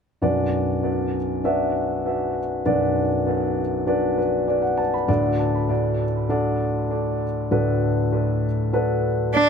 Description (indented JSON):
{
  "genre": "piano-driven pop",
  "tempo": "99 BPM",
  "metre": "4/4",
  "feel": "straight",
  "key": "B minor",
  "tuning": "A4 = 439 Hz",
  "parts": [
    { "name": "dark baby grand piano", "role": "accompaniment", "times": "0.2-9.5 s", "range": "B1 to B5", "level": "-20 LUFS", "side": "equal", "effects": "tape echo" },
    { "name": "rich cello", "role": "melody", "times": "9.3-9.5 s", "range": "D4", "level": "-14 LUFS", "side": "right 2 dB", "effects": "none" }
  ],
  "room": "moderate echo chamber reverb, RT60 2.2 s",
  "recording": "echo-heavy mix",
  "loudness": "-20 LUFS",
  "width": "side -6 dB against mid",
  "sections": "0.2-9.5 A section",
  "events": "none",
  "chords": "0.2 Bm; 5.1 D"
}